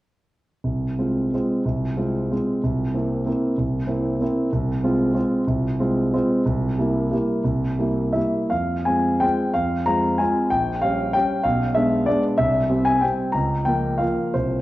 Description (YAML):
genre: classical, piano waltz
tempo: 151-204 BPM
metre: 3/4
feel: rubato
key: F minor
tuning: A4 = 438 Hz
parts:
  - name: warm concert grand piano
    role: solo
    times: 0.6-14.6 s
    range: Bb1 to Bb5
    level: -19 LUFS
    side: equal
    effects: none
room: wet recital hall reverb, RT60 1.7 s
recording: worn, warbling old tape, cassette tape, warbly pitch drift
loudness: -19 LUFS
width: side -16 dB against mid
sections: 0.6-8.5 A section; 8.5-14.6 B section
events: none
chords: 0.6 Fm/C; 2.6 C7; 4.5 Fm/C; 6.5 C7; 8.5 Fm; 10.5 Gdim/Bb; 11.5 Bdim7; 12.4 C; 13.4 Bbm/Db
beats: | 0.65 0.99 1.33 | 1.65 1.98 2.32 | 2.64 2.95 3.27 | 3.59 3.90 4.21 | 4.53 4.84 5.16 | 5.48 5.79 6.13 | 6.46 6.79 7.13 | 7.46 7.79 8.16 | 8.54 8.88 9.23 | 9.55 9.87 10.20 | 10.52 10.82 11.14 | 11.45 11.75 12.06 | 12.38 12.70 13.03 | 13.36 13.68 14.02 | 14.38